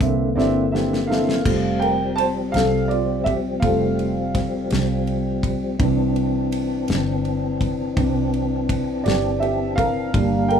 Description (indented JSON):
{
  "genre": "six-eight pop ballad",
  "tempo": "55 BPM (dotted quarters)",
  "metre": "6/8",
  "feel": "straight",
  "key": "F major",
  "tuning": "A4 = 440 Hz",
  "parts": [
    { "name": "dark upright piano", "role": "accompaniment", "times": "0.0-10.6 s", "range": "E3 to A5", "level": "-22 LUFS", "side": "right 3 dB", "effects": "none" },
    { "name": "tonewheel organ", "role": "sustained chords", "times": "0.0-10.6 s", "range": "D3 to D4", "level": "-24 LUFS", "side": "left 4 dB", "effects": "overdrive, chorus vibrato, fast rotary speaker" },
    { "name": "vintage muted fingered electric bass", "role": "bass", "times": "0.0-10.6 s", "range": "F1 to C2", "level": "-26 LUFS", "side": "right 1 dB", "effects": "none" },
    { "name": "loose indie drum kit", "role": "drums", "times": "0.0-10.6 s", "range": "crash cymbal, hi-hat, kick drum, ride cymbal, snare drum", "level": "-26 LUFS", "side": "equal", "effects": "none" }
  ],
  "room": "moderate small room reverb, RT60 0.6 s",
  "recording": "rough home demo mix",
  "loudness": "-18 LUFS",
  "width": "side -7 dB against mid",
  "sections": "0.0-1.5 A section; 1.5-10.6 B section",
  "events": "drum fill 0.4-1.5; upright piano solo 1.5-10.6",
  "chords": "0.0 Cadd9; 1.5 Fadd9; 5.8 Cadd9"
}